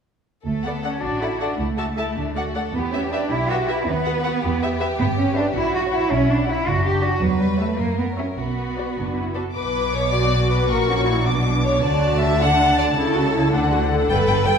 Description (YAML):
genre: quick classical-period movement for string orchestra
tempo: 106 BPM (dotted quarters)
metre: 6/8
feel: straight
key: D major, B minor from 5.0 s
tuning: A4 = 441 Hz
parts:
  - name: rich chamber violin section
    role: second line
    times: 0.5-14.6 s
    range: D4 to G5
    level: -24 LUFS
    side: left 1 dB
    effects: none
  - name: rich chamber double bass section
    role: bass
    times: 0.5-14.5 s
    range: F#1 to F#2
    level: -25 LUFS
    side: right 1 dB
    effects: none
  - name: warm chamber cello section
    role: bass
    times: 0.5-14.5 s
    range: G2 to G4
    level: -23 LUFS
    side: right 1 dB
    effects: none
  - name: rich chamber violin section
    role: melody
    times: 0.6-14.5 s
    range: D5 to D6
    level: -28 LUFS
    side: left 3 dB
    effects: none
  - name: warm studio viola section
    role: accompaniment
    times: 0.6-14.6 s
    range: C#4 to E5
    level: -27 LUFS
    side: right 1 dB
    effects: none
room: wet scoring stage reverb, RT60 1.6 s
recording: recorded in a church or concert hall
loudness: -18 LUFS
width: side -6 dB against mid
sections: 0.5-9.6 A section; 9.6-14.6 B section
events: none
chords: 0.5 D; 1.6 A/C#; 2.2 D; 2.7 Em; 3.9 B/D#; 4.4 Em; 5.0 Em/G; 5.5 F#7/A#; 6.1 Bm; 7.2 C#dim/E; 7.8 F#7; 8.4 Bm; 10.7 F#/A#; 11.3 Bm; 11.8 D; 13.0 A/C#; 13.5 D